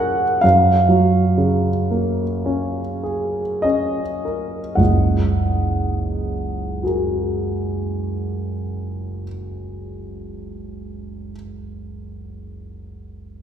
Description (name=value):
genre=classical, impressionist solo piano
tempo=24-34 BPM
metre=4/4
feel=rubato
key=Gb major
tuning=A4 = 440 Hz
part: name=warm concert grand piano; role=solo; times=0.0-13.4 s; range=Gb1 to Gb5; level=-19 LUFS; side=right 1 dB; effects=none
room=wet recital hall reverb, RT60 1.8 s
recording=recorded in a church or concert hall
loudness=-17 LUFS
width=side -9 dB against mid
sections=0.0-4.8 A section; 4.8-13.0 B section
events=slowing down 0.0-4.8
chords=0.0 Gbadd9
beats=0.42 2.44 | 4.78 6.83 8.88 10.95